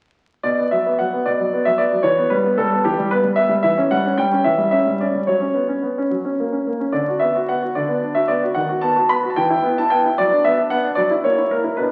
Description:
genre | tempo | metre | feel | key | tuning
classical-period piano sonatina | 74 BPM (dotted quarters) | 6/8 | rubato | B minor | A4 = 440 Hz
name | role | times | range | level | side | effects
clear concert grand piano | solo | 0.4-11.9 s | B2 to B5 | -18 LUFS | equal | none
room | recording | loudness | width
wet recital hall reverb, RT60 1.8 s | very old 78 rpm record, vinyl crackle | -19 LUFS | mono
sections
0.4-11.9 A section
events
none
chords
0.4 B5; 2.1 Em; 3.6 C#dim/E; 5.3 F#sus4; 6.1 F#; 6.9 Bm/D; 8.6 B/D#; 9.4 Em; 10.2 Bm/F#; 11.0 F#7

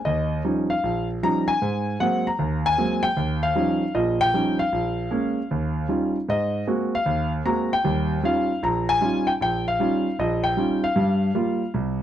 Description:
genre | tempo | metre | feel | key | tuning
solo jazz | 154 BPM | 4/4 | swing 65% on 8ths | Eb mixolydian | A4 = 438 Hz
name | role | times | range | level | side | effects
warm concert grand piano | solo | 0.1-12.0 s | Bb1 to Bb5 | -21 LUFS | equal | none
room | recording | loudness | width
studio reverb | dry, close 1970s-style studio recording | -21 LUFS | side -10 dB against mid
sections
0.1-12.0 A section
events
none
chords
0.1 Eb9; 1.6 Ab9; 3.2 Eb9; 4.7 Bbm7; 5.5 Eb9; 6.3 Ab9; 7.8 Eb9; 11.0 Gm7

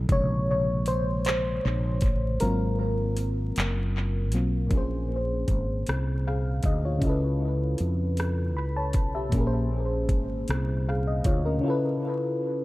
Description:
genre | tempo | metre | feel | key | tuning
slow six-eight R&B | 52 BPM (dotted quarters) | 6/8 | straight | Bb minor | A4 = 440 Hz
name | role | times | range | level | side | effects
mellow FM electric piano | accompaniment | 0.0-12.6 s | Bb2 to Cb6 | -28 LUFS | left 1 dB | chorus, tape echo
mellow fretless electric bass | bass | 0.0-11.6 s | Gb1 to F2 | -27 LUFS | equal | none
smooth R&B drum kit | drums | 0.1-11.4 s | handclaps, hi-hat, kick drum, rim click | -28 LUFS | equal | tape echo
room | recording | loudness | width
light reverb | echo-heavy mix, vinyl crackle | -24 LUFS | side -18 dB against mid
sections
0.0-4.7 A section; 4.7-12.6 B section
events
FM electric piano solo 0.0-4.7; kick muted 2.4-4.7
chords
0.1 Bbm9; 2.4 Ab13; 4.7 Bbm9; 7.0 Db7alt; 9.3 Bbm9; 11.6 Db7alt

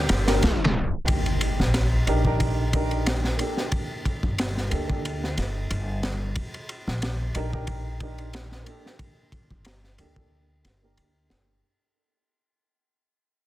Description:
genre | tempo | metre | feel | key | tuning
trip hop | 91 BPM | 4/4 | swing 54% on 16ths | G minor | A4 = 440 Hz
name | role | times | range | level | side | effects
dark upright piano | accompaniment | 0.0-11.6 s | Bb3 to Bb4 | -31 LUFS | right 1 dB | harmonic tremolo, vintage 12-bit sampler grit, low-pass filter, tape echo
upright bass | bass | 0.0-11.6 s | G1 to Eb2 | -27 LUFS | equal | none
crunchy breakbeat drum kit | drums | 0.1-11.5 s | kick drum, ride cymbal, snare drum | -27 LUFS | equal | none
impact | sound effects | 1.1-3.7 s | none | -30 LUFS | equal | none
room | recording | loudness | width
small room ambience | dense, heavily limited modern master, tape stop | -23 LUFS | side -15 dB against mid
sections
0.0-1.1 A section; 1.1-11.6 B section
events
tape stop 0.4-1.1; fade-out 1.1-11.6; impact 1.1-3.7; filter sweep on upright piano 1.1-11.6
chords
0.0 Gmadd9; 1.1 Ebmaj7; 3.7 Gmadd9; 6.4 Ebmaj7; 9.0 Gmadd9

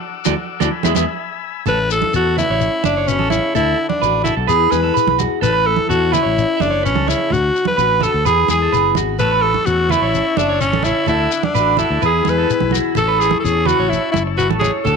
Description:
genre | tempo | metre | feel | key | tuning
highlife guitar band | 127 BPM | 4/4 | straight | A major | A4 = 441 Hz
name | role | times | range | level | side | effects
combo organ | sustained chords | 0.0-1.6, 9.2-15.0 s | F#5 to E6 | -28 LUFS | left 12 dB | none
flamenco guitar | accompaniment | 0.2-15.0 s | E2 to A4 | -24 LUFS | left 15 dB | none
shekere | percussion | 0.2-15.0 s | none | -24 LUFS | left 10 dB | none
clean electric guitar | arpeggios | 0.3-15.0 s | F#4 to E5 | -20 LUFS | right 12 dB | slapback echo
fingered electric bass | bass | 0.3-15.0 s | F#1 to E2 | -21 LUFS | left 1 dB | none
congas | percussion | 0.3-15.0 s | none | -24 LUFS | right 11 dB | none
raspy alto saxophone | melody | 1.7-15.0 s | C#4 to B4 | -18 LUFS | left 2 dB | none
room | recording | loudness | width
moderate spring reverb, RT60 1.3 s, small room ambience | 1960s-style stereo with parts hard left and right | -14 LUFS | side -5 dB against mid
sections
0.0-1.7 A section; 1.7-15.0 B section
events
band accent 0.0-1.7; clean electric guitar solo 0.0-1.7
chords
0.0 Dadd9; 0.7 E; 1.7 A; 3.5 D; 4.5 E; 5.4 A; 7.3 D; 8.3 E; 9.2 A; 11.1 Dadd9; 12.0 E; 13.0 A

